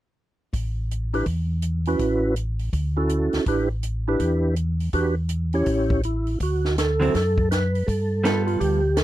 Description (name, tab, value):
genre	soul jazz organ trio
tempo	164 BPM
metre	4/4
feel	swing 64% on 8ths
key	unclear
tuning	A4 = 440 Hz
part	mellow tonewheel organ	bass	0.5-9.0 s	A1 to G2	-24 LUFS	equal	chorus vibrato, slow rotary speaker
part	compact cocktail drum kit	drums	0.5-9.0 s	hi-hat, kick drum, snare drum	-28 LUFS	equal	none
part	percussive tonewheel organ	melody	1.1-9.0 s	C#4 to C#5	-23 LUFS	right 1 dB	slow rotary speaker, chorus vibrato
part	vintage hollow-body jazz guitar	accompaniment	7.0-8.8 s	D3 to A4	-24 LUFS	right 2 dB	none
room	little or no reverb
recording	dry, close 1970s-style studio recording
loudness	-21 LUFS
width	side -14 dB against mid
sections	0.5-6.4 A section; 6.4-9.0 B section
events	none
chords	0.5 A5; 2.0 Dmaj7/A; 3.5 A7sus4; 4.9 Em7; 5.7 A7; 6.4 D; 7.9 G9